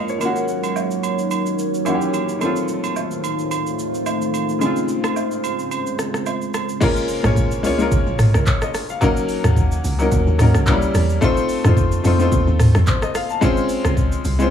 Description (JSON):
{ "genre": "amapiano", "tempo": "109 BPM", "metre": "4/4", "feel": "swing 55% on 16ths", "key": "Bb minor", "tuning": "A4 = 440 Hz", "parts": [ { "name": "bright baby grand piano", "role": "accompaniment", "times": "0.0-14.5 s", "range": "Db3 to A5", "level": "-21 LUFS", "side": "left 2 dB", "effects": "none" }, { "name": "deep dark ambient pad", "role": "sustained chords", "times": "0.0-6.8 s", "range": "Db3 to Db5", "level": "-23 LUFS", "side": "equal", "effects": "chorus, built-in reverb, sidechain pumping" }, { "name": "afro-pop drum kit", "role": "drums", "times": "0.1-14.5 s", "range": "crash cymbal, handclaps, hi-hat, kick drum, rim click, shaker, toms", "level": "-20 LUFS", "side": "equal", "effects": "none" }, { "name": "agogo bells and woodblock", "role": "percussion", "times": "0.2-6.7 s", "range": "none", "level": "-27 LUFS", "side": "right 12 dB", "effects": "none" }, { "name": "deep log drum bass", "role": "bass", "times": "7.2-14.5 s", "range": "Bb1 to F2", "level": "-18 LUFS", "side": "equal", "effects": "none" } ], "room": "little or no reverb", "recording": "echo-heavy mix, small room reverb", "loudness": "-16 LUFS", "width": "side -8 dB against mid", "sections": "0.0-6.8 A section; 6.8-14.5 B section", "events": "drop 6.8-14.5", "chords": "0.2 Ebm7; 1.9 Edim7; 2.4 F7; 4.6 Dbmaj7; 6.8 Bbm7; 9.0 Ebm7; 10.7 Edim7; 11.2 F7; 13.4 Dbmaj7" }